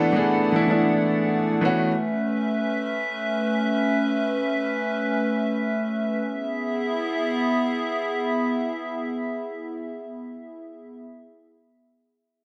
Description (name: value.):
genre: amapiano.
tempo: free time.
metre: none.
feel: none.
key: E mixolydian.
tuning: A4 = 440 Hz.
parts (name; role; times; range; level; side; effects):
clear baby grand piano; accompaniment; 0.0-1.9 s; E3 to A4; -23 LUFS; equal; none.
hollow soft pad; sustained chords; 0.0-11.0 s; A3 to F#5; -26 LUFS; equal; chorus.
room: light reverb, small room ambience.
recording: none.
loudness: -24 LUFS.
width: mono.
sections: 0.0-6.3 A section; 6.3-10.6 B section.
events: none.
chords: 0.0 E9sus4; 1.6 B9sus4; 6.3 E.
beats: free time.